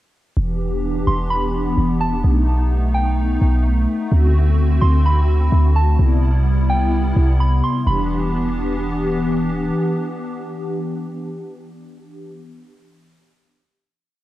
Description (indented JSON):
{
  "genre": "hip hop, atmospheric cloud-rap",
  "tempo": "128 BPM",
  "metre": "4/4",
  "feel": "half-time",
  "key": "E minor",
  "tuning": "A4 = 441 Hz",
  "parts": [
    { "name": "hollow soft pad", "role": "sustained chords", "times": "0.4-12.4 s", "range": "C3 to G4", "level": "-22 LUFS", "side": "left 1 dB", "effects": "ensemble chorus, cassette tape" },
    { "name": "warm 808-style bass", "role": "bass", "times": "0.4-9.7 s", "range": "E1 to D2", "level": "-17 LUFS", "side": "equal", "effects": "none" },
    { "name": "soft synth bell", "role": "melody", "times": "1.1-9.2 s", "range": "G5 to C6", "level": "-25 LUFS", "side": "right 2 dB", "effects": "chorus, low-pass filter, analog delay" }
  ],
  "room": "little or no reverb",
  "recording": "home recording on cassette",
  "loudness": "-16 LUFS",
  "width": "side -15 dB against mid",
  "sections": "0.4-7.9 verse; 7.9-11.6 final chord",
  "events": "none",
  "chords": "0.4 Em7; 2.2 B7; 4.1 D7; 6.0 Cmaj7; 7.9 Em7"
}